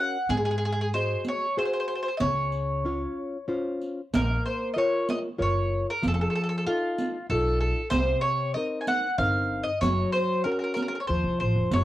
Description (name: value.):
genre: italian folk, Italian serenade.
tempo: 94 BPM.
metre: 3/4.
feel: straight.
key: Db major, Bb minor from 4.1 s.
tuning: A4 = 439 Hz.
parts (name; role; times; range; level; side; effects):
mandolin; melody; 0.0-11.8 s; F4 to Ab5; -28 LUFS; equal; cassette tape.
nylon-string guitar; accompaniment; 0.0-11.8 s; C3 to Eb5; -29 LUFS; left 1 dB; cassette tape.
upright bass; bass; 0.3-11.8 s; F1 to Ab2; -28 LUFS; equal; transformer saturation.
riq; percussion; 0.3-11.8 s; none; -30 LUFS; right 2 dB; none.
room: moderate booth ambience, RT60 0.2 s.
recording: home recording on cassette.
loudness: -24 LUFS.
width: side -14 dB against mid.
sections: 0.0-4.1 A section; 4.1-11.8 B section.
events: none.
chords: 0.3 Ab7; 2.2 Dbmaj7; 4.1 Bbm; 6.0 F7; 7.9 Cm7; 9.8 Gb; 11.1 F.